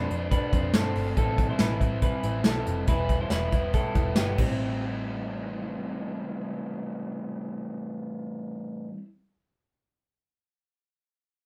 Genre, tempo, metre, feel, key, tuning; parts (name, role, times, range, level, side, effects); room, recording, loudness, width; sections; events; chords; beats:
jangly indie pop; 140 BPM; 4/4; straight; A minor; A4 = 440 Hz
raw garage guitar; accompaniment; 0.0-9.0 s; A2 to C5; -35 LUFS; equal; overdrive
electric guitar through a small old amp; arpeggios; 0.0-5.9 s; B3 to C5; -34 LUFS; equal; tape echo
vintage muted picked electric bass; bass; 0.0-8.9 s; E1 to G2; -34 LUFS; equal
soft brush drum kit; drums; 0.1-4.5 s; crash cymbal, hi-hat, kick drum, snare drum; -28 LUFS; equal
moderate studio ambience, RT60 0.5 s; band playing live in one room; -28 LUFS; mono
0.0-4.6 A section; 4.6-8.1 B section
0.0 F6; 1.2 Am7; 2.9 Em; 4.4 Am7
0.31 0.74 | 1.17 1.60 2.03 2.46 | 2.88 3.31 3.74 4.17 | 4.60 5.04 5.46 5.90 | 6.33 6.76 7.19 7.62